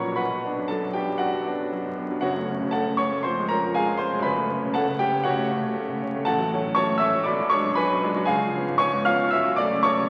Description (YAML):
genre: classical, romantic character piece for solo piano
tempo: 118 BPM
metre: 4/4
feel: rubato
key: F# minor from 6.3 s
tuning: A4 = 443 Hz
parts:
  - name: clear concert grand piano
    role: solo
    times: 0.0-10.1 s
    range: F#1 to E#6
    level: -24 LUFS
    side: equal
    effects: none
room: wet concert hall reverb, RT60 2.4 s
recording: very old 78 rpm record, vinyl crackle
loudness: -24 LUFS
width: mono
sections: 0.0-10.1 A section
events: none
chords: 0.2 Bm; 2.2 F#m; 3.3 C#/E#; 4.3 F#m; 6.3 F#m/A; 7.3 G#m7b5/B; 8.3 C#7; 9.3 F#m